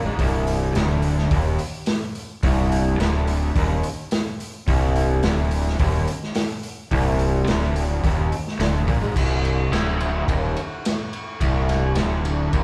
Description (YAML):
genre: psychedelic rock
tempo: 107 BPM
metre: 4/4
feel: straight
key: C minor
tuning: A4 = 438 Hz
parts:
  - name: raw garage guitar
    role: riff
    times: 0.0-12.6 s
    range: C2 to Bb2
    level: -26 LUFS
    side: equal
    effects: overdrive
  - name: fuzz fingered electric bass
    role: bass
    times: 0.0-12.6 s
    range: C1 to Bb1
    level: -26 LUFS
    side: equal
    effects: overdrive
  - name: crunchy breakbeat drum kit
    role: drums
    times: 0.2-12.6 s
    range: crash cymbal, hi-hat, kick drum, ride cymbal, snare drum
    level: -27 LUFS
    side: equal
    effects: none
room: wet large studio reverb, RT60 1.4 s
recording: band playing live in one room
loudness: -22 LUFS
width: mono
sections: 0.0-9.2 A section; 9.2-12.6 B section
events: none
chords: 0.0 Cm